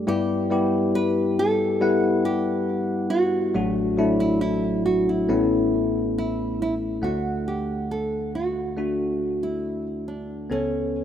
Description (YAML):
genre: pop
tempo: 69 BPM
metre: 4/4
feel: straight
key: D major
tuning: A4 = 436 Hz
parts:
  - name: bell-like tine electric piano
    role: accompaniment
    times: 0.0-11.0 s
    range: A1 to F#5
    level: -22 LUFS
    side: left 2 dB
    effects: lush chorus
  - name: nylon-string guitar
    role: melody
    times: 0.1-11.0 s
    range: C#4 to B4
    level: -27 LUFS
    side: right 2 dB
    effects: none
room: moderate lush hall reverb, RT60 2.8 s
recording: rough home demo mix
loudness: -21 LUFS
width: side -9 dB against mid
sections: 0.0-7.0 A section; 7.0-11.0 B section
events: none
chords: 0.1 Em/G; 3.6 D/A; 5.3 Aadd9; 7.0 D; 10.5 Aadd9/C#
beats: | 0.08 0.95 1.82 2.69 | 3.56 4.42 5.29 6.16 | 7.03 7.90 8.77 9.64 | 10.51